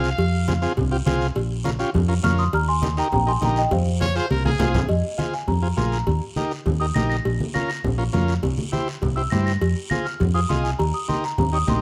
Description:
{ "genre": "latin, cumbia", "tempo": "204 BPM", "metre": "4/4", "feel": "straight", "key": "F minor", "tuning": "A4 = 440 Hz", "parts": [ { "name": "bright trumpet", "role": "second line", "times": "0.0-0.7, 4.0-4.9 s", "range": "Ab4 to F5", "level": "-30 LUFS", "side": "equal", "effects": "none" }, { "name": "overdriven combo organ", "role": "accompaniment", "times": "0.0-11.8 s", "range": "C4 to Eb5", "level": "-30 LUFS", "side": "equal", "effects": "none" }, { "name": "hollow-body short-scale fingered electric bass", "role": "bass", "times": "0.0-11.8 s", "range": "Bb1 to G2", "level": "-24 LUFS", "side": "equal", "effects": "none" }, { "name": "guiro", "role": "percussion", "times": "0.0-11.8 s", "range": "none", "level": "-41 LUFS", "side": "equal", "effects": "none" }, { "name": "congas", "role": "percussion", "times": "0.2-11.8 s", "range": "none", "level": "-29 LUFS", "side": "equal", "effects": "none" }, { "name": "cowbell and timbales", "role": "percussion", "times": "0.2-11.8 s", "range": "none", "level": "-32 LUFS", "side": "equal", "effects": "none" }, { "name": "celesta", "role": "melody", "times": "2.2-11.8 s", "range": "C5 to Bb6", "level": "-28 LUFS", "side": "equal", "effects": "none" } ], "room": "light reverb", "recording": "close, detailed microphones", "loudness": "-22 LUFS", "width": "mono", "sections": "0.0-4.9 A section; 4.9-11.8 B section", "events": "drum fill 4.3-4.9; celesta solo 4.9-11.8", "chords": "0.0 Fm; 1.4 Bbm; 2.5 Eb; 3.7 Fm; 6.1 Eb; 7.3 Bbm; 8.4 C; 9.6 Fm; 10.8 Eb", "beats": "| 0.19 0.48 0.78 1.07 | 1.36 1.66 1.95 2.25 | 2.54 2.83 3.13 3.42 | 3.71 4.01 4.30 4.60 | 4.89 5.19 5.48 5.78 | 6.07 6.37 6.66 6.96 | 7.25 7.55 7.84 8.14 | 8.44 8.73 9.03 9.32 | 9.62 9.91 10.21 10.50 | 10.80 11.09 11.39 11.68" }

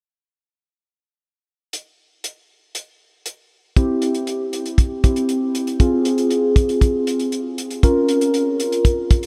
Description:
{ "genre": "synth-pop", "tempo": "118 BPM", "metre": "4/4", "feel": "straight", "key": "unclear", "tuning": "A4 = 440 Hz", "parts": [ { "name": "damped 70s drum kit", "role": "drums", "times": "1.7-9.3 s", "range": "hi-hat, kick drum", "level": "-20 LUFS", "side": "equal", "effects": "none" }, { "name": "muted felt-like synth keys", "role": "accompaniment", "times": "3.8-9.3 s", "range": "C4 to Bb4", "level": "-21 LUFS", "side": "equal", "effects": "chorus, phaser" } ], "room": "wet huge ambient reverb, RT60 8.2 s", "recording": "dreamy mix soaked in reverb", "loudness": "-19 LUFS", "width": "mono", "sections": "1.7-3.8 A section; 3.8-9.3 B section", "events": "none", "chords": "1.7 N.C.; 3.8 C; 5.8 Fm; 7.8 Bbm", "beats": "| 1.73 2.24 2.75 3.26 | 3.77 4.27 4.78 5.29 | 5.80 6.31 6.82 7.32 | 7.83 8.34 8.85" }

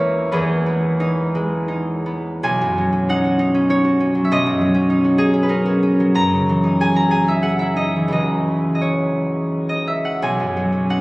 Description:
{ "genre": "classical, solo harp piece", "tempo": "78-101 BPM", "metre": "3/4", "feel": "rubato", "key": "B major", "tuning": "A4 = 439 Hz", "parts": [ { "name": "concert harp", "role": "solo", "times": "0.0-11.0 s", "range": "B1 to A#5", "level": "-16 LUFS", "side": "equal", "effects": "none" } ], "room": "wet cathedral reverb, RT60 6.7 s", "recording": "recorded on a phone in the room, club reverb", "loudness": "-16 LUFS", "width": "side -21 dB against mid", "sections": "0.0-2.4 A section; 2.4-11.0 B section", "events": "none", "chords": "0.3 Emaj7; 2.4 Badd9; 6.2 F#13; 8.1 C#madd9; 10.2 Badd9", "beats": "| 0.33 1.01 1.69 | 2.43 3.08 3.69 | 4.29 4.89 5.50 | 6.16 6.79 7.43 | 8.12 8.83 9.52 | 10.21 10.88" }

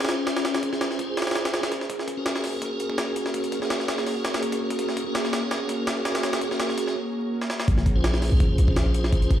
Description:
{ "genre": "drum and bass, jungle", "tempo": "166 BPM", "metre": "4/4", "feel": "swing 54% on 16ths", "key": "Bb minor", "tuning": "A4 = 439 Hz", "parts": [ { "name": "ethereal airy pad", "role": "sustained chords", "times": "0.0-9.4 s", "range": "Bb3 to Db5", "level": "-30 LUFS", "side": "equal", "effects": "ensemble chorus, built-in reverb, phaser, vintage 12-bit sampler grit" }, { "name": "tonewheel organ", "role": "stabs", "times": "0.0-9.4 s", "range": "Db4 to C5", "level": "-29 LUFS", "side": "equal", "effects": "chorus vibrato, slow rotary speaker, vintage 12-bit sampler grit, low-pass filter, dub echo" }, { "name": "jungle sampler-style drum kit", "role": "drums", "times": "0.0-9.4 s", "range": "hi-hat, kick drum, snare drum", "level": "-26 LUFS", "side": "equal", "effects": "high-pass filter on snare, high-pass filter on hats, high-pass filter on kick" }, { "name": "warm 808-style bass", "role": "bass", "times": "7.7-9.3 s", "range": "Bb1", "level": "-21 LUFS", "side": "equal", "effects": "tube saturation" } ], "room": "moderate echo chamber reverb, RT60 1.2 s", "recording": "played on a big sound system in a bare room, stone room reverb, vinyl crackle", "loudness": "-22 LUFS", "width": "side -11 dB against mid", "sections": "0.0-7.7 A section; 7.7-9.4 B section", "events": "build-up 0.0-7.7; filter sweep on ambient pad 0.0-7.7; break 7.0-7.7; drum fill 7.4; drop 7.7-9.4", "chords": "0.0 Bbm9; 1.9 Gbadd9/Bb; 7.7 Bbm9", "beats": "0.09 | 0.45 0.81 1.17 1.53 | 1.90 2.26 2.62 2.98 | 3.34 3.70 4.07 4.43 | 4.79 5.15 5.51 5.87 | 6.23 6.59 6.96 7.32 | 7.68 8.04 8.40 8.76 | 9.12" }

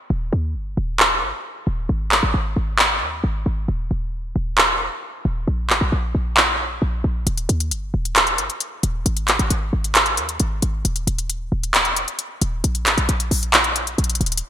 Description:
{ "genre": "hip hop, trap", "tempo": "134 BPM", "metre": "4/4", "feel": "half-time", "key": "Eb major", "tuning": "A4 = 440 Hz", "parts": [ { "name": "short 808-style bass", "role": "bass", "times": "0.1-14.4 s", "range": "Eb1 to Eb2", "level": "-22 LUFS", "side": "equal", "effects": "none" }, { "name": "trap drum kit", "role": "drums", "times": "1.0-14.4 s", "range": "handclaps, hi-hat", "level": "-18 LUFS", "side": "equal", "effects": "gated reverb" } ], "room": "light reverb, digital ambience", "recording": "bright 1980s-style digital production", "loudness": "-18 LUFS", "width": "side -10 dB against mid", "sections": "0.1-14.5 A section", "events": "hi-hats muted 0.1-7.3", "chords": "none", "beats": "| 0.10 0.55 1.00 1.45 | 1.89 2.34 2.79 3.24 | 3.68 4.13 4.58 5.03 | 5.47 5.92 6.37 6.82 | 7.27 7.71 8.16 8.61 | 9.06 9.51 9.95 10.40 | 10.85 11.30 11.74 12.19 | 12.64 13.09 13.54 13.98" }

